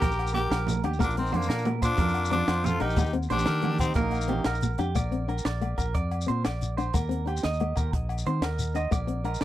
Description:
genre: highlife guitar band.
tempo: 121 BPM (dotted quarters).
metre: 12/8.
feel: straight.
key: Bb major.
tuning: A4 = 439 Hz.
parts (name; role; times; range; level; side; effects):
raspy tenor saxophone; melody; 0.0-4.6 s; Bb3 to G4; -30 LUFS; left 3 dB; none.
breathy trumpet; second line; 0.0-4.6 s; D4 to Bb4; -36 LUFS; left 4 dB; none.
clean electric guitar; arpeggios; 0.0-9.4 s; G4 to Eb5; -33 LUFS; right 6 dB; tape echo.
fingered electric bass; bass; 0.0-9.4 s; Bb1 to Eb3; -29 LUFS; equal; none.
compact cocktail drum kit; drums; 0.0-9.4 s; hi-hat, kick drum, snare drum; -29 LUFS; equal; none.
congas; percussion; 0.0-4.9 s; none; -33 LUFS; right 7 dB; none.
shekere; percussion; 0.0-9.4 s; none; -35 LUFS; left 3 dB; none.
agogo bells; percussion; 0.2-9.4 s; none; -39 LUFS; left 7 dB; none.
fingerpicked steel-string acoustic guitar; accompaniment; 0.8-9.4 s; Bb3 to D4; -33 LUFS; left 7 dB; none.
room: little or no reverb.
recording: dry, close 1970s-style studio recording.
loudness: -24 LUFS.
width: side -14 dB against mid.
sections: 0.0-5.0 A section; 5.0-9.4 B section.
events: none.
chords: 0.0 Eb; 1.0 Bb; 3.0 Eb; 5.0 Bb; 6.9 Eb5; 8.9 Bb.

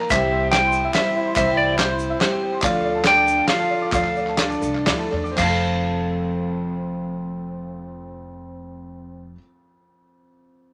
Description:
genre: indie folk with a building arrangement.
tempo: 114-142 BPM.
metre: 3/4.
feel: straight.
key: F major.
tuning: A4 = 440 Hz.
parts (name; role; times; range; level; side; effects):
felt-muted upright piano; accompaniment; 0.0-10.7 s; Bb1 to E5; -34 LUFS; equal; none.
picked twelve-string acoustic guitar; accompaniment; 0.0-9.5 s; F2 to C5; -30 LUFS; equal; none.
warm upright piano; arpeggios; 0.0-9.4 s; Bb4 to D6; -32 LUFS; equal; none.
group handclap; percussion; 0.0-5.6 s; none; -29 LUFS; equal; none.
clean electric guitar; melody; 0.1-9.4 s; C5 to G5; -23 LUFS; equal; harmonic tremolo.
warm French horn; second line; 0.1-9.3 s; C4 to G4; -31 LUFS; equal; none.
upright bass; bass; 0.1-9.4 s; F1 to E2; -34 LUFS; equal; none.
natural country drum kit; drums; 0.1-5.5 s; crash cymbal, kick drum, ride cymbal, snare drum; -28 LUFS; equal; none.
egg shaker; percussion; 0.1-5.6 s; none; -44 LUFS; equal; none.
room: moderate studio reverb, RT60 0.6 s.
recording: none.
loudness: -21 LUFS.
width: mono.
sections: 0.0-5.4 A section; 5.4-8.5 B section.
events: slowing down 2.6-5.4.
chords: 0.1 C; 2.6 Dm; 5.4 F.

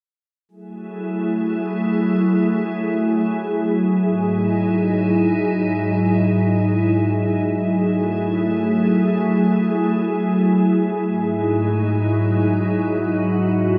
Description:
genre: IDM.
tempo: free time.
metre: none.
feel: none.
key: F# dorian.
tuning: A4 = 442 Hz.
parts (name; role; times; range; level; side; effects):
glassy FM pad; sustained chords; 0.7-13.8 s; G#2 to G#4; -19 LUFS; equal; ensemble chorus, built-in reverb.
room: moderate plate reverb, RT60 3.6 s.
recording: none.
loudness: -19 LUFS.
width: mono.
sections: 0.5-7.5 A section; 7.5-13.8 B section.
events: none.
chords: 0.5 F#m9; 4.0 Emaj9/G#; 7.5 F#m9; 11.1 Emaj9/G#.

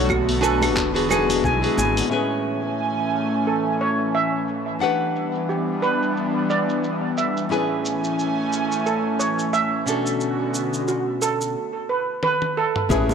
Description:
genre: sunset chillout.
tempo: 89 BPM.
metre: 4/4.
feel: swing 57% on 16ths.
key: A major.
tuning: A4 = 442 Hz.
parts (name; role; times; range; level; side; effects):
nylon-string guitar; accompaniment; 0.0-13.1 s; A2 to G#5; -25 LUFS; left 2 dB; auto-pan, tape echo.
airy breathy pad; sustained chords; 0.0-13.1 s; D3 to G#5; -24 LUFS; equal; chorus.
mellow fretless electric bass; bass; 0.0-2.0, 12.9-13.1 s; E1 to B1; -25 LUFS; left 1 dB; tube saturation.
steel pan; arpeggios; 0.1-13.1 s; F#4 to G#5; -25 LUFS; right 4 dB; low-pass filter, tape echo.
dusty soul sampler-style drum kit; drums; 0.1-13.1 s; cabasa, claves, crash cymbal, handclaps, hi-hat, toms; -29 LUFS; equal; low-pass filter on perc, low-pass filter on hats, low-pass filter on snare, low-pass filter on cymbals, low-pass filter on toms, low-pass filter on room.
electronic kick drum; drums; 0.1-1.6, 12.9-13.1 s; none; -28 LUFS; left 1 dB; overdrive.
congas; percussion; 0.1-1.9, 12.9-13.1 s; none; -30 LUFS; equal; none.
room: light reverb.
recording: dry, gritty hardware recording.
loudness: -20 LUFS.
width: side -6 dB against mid.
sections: 0.0-2.1 A section; 2.1-12.9 B section.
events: filter sweep on drum 2.1-12.9; drum fill 12.2-12.9.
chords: 0.0 Bm7; 0.8 E7; 2.1 Amaj7; 4.8 Em7; 7.5 Amaj7; 9.9 Bm7.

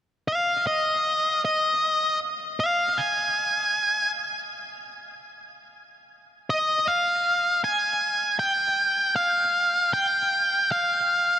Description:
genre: rock.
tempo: 78 BPM.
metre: 4/4.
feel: straight.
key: unclear.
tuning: A4 = 440 Hz.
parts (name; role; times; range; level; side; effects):
octave-fuzz lead guitar; melody; 0.3-11.4 s; Eb5 to Ab5; -22 LUFS; equal; distortion, digital delay.
room: moderate huge ambient reverb, RT60 7.0 s.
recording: none.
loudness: -21 LUFS.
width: side -11 dB against mid.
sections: 0.0-11.4 A section.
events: none.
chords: none.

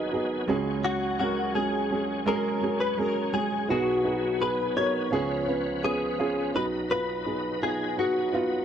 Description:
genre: piano-driven pop.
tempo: 84 BPM.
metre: 4/4.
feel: straight.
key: unclear.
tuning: A4 = 441 Hz.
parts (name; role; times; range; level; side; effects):
direct-recorded clean electric guitar; melody; 0.0-8.6 s; F#4 to D#5; -28 LUFS; left 2 dB; ensemble chorus.
dark upright piano; accompaniment; 0.0-8.6 s; G#1 to B4; -28 LUFS; right 3 dB; none.
bright tonewheel organ; sustained chords; 0.0-8.6 s; B2 to B4; -36 LUFS; left 2 dB; overdrive, chorus vibrato, fast rotary speaker.
room: small room ambience.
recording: dry, close 1970s-style studio recording.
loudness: -24 LUFS.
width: side -9 dB against mid.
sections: 0.0-6.5 A section; 6.5-8.6 B section.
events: none.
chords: 0.5 C#sus4; 3.7 G#m7/B; 5.1 C#7; 6.5 B.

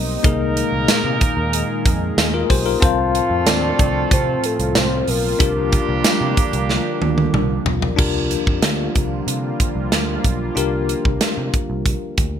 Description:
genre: 1980s-style pop.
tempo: 93 BPM.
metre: 4/4.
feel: straight.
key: unclear.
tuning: A4 = 440 Hz.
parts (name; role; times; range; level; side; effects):
soft octave-layered synth lead; melody; 0.0-5.7 s; A4 to F5; -24 LUFS; left 2 dB; chorus, tremolo, ping-pong delay.
bell-like tine electric piano; accompaniment; 0.0-12.4 s; Bb3 to A5; -24 LUFS; left 8 dB; medium stereo tremolo.
sweeping resonant pad; sustained chords; 0.0-12.4 s; A2 to Ab4; -26 LUFS; right 2 dB; chorus.
vintage muted picked electric bass; bass; 0.0-12.4 s; B1 to C3; -24 LUFS; equal; none.
clear horn section; stabs; 0.2-7.6 s; G3 to Bb4; -25 LUFS; right 5 dB; none.
modern studio drum kit; drums; 0.2-12.3 s; crash cymbal, hi-hat, kick drum, snare drum, tambourine, toms; -18 LUFS; right 1 dB; gated reverb.
room: little or no reverb.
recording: none.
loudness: -16 LUFS.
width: side -9 dB against mid.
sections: 0.0-8.0 A section; 8.0-12.4 B section.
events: drum fill 6.7-8.0.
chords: 0.2 Absus2/C; 2.8 F/C; 5.4 Gm7/C.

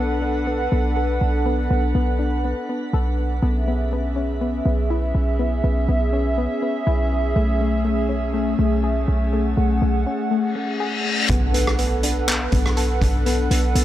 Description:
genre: hip hop, atmospheric cloud-rap.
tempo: 122 BPM.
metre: 4/4.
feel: half-time.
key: B dorian.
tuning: A4 = 440 Hz.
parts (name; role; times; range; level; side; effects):
hollow soft pad; sustained chords; 0.0-13.8 s; A3 to F#5; -24 LUFS; equal; chorus.
soft round pluck; arpeggios; 0.0-13.8 s; A3 to A4; -26 LUFS; left 4 dB; chorus, tape echo.
warm 808-style bass; bass; 0.0-13.8 s; B1; -21 LUFS; equal; none.
reverse cymbal and impact; sound effects; 10.6-13.3 s; none; -27 LUFS; left 3 dB; none.
vintage drum kit; drums; 11.3-13.8 s; handclaps, hi-hat, kick drum, rim click; -24 LUFS; equal; none.
room: light reverb, small room ambience.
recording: none.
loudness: -18 LUFS.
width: side -13 dB against mid.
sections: 0.0-11.3 A section; 11.3-13.8 B section.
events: reverse cymbal 10.6-11.3; impact 11.3-13.3.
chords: 0.0 Bm7; 3.4 C#m7/B; 7.4 Amaj7/B; 11.3 Bm7.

